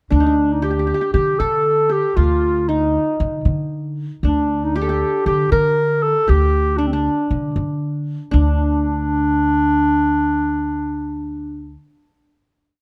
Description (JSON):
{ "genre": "Arabic maqam ensemble", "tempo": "117 BPM", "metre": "4/4", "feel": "straight", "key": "D maqam kurd", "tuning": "A4 = 440 Hz", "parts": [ { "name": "mellow clarinet", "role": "melody", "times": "0.1-11.7 s", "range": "C4 to Bb4", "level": "-20 LUFS", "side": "equal", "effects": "plate reverb" }, { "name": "qanun", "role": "second line", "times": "0.1-11.7 s", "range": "D4 to Bb4", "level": "-27 LUFS", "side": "equal", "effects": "none" }, { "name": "upright bass", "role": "bass", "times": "0.1-11.7 s", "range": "D2 to D3", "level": "-23 LUFS", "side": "equal", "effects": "none" } ], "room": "light reverb", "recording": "dark, warm production", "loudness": "-18 LUFS", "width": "mono", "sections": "0.1-8.3 A section; 8.3-12.4 final note", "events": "none", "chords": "none", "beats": "| 0.12 0.64 1.15 1.66 | 2.18 2.69 3.21 3.72 | 4.23 4.75 5.26 5.77 | 6.28 6.80 7.31 7.82 | 8.33 8.84 9.35 9.85 | 10.36 10.87 11.38" }